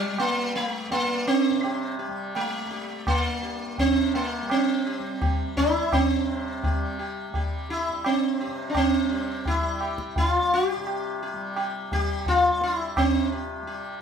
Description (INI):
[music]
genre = indian classical, Hindustani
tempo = 85 BPM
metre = 4/4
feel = straight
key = G raga bageshri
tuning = A4 = 441 Hz
[part]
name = sitar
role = melody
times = 0.0-14.0 s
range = G3 to G4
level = -24 LUFS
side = right 1 dB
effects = none
[part]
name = tanpura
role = drone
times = 0.0-14.0 s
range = G2 to G3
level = -35 LUFS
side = left 1 dB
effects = none
[part]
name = tabla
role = percussion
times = 0.2-13.2 s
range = none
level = -28 LUFS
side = equal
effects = none
[sound]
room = wet studio reverb, RT60 0.7 s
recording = band playing live in one room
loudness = -23 LUFS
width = side -7 dB against mid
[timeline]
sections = 0.0-14.0 A section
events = speeding up 0.0-14.0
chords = none